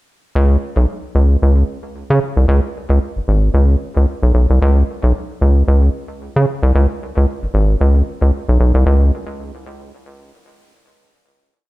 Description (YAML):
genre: funk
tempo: 113 BPM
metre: 4/4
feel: swing 56% on 16ths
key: unclear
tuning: A4 = 440 Hz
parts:
  - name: rubbery square bass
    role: solo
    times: 0.4-9.1 s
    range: Ab1 to Db3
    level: -13 LUFS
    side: equal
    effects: none
room: light reverb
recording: none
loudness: -13 LUFS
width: side -19 dB against mid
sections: 0.3-8.9 breakdown; 8.9-11.0 final chord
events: none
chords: none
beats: | 0.35 0.88 1.41 1.95 | 2.48 3.01 3.55 4.08 | 4.61 5.15 5.68 6.21 | 6.75 7.28 7.81 8.34 | 8.87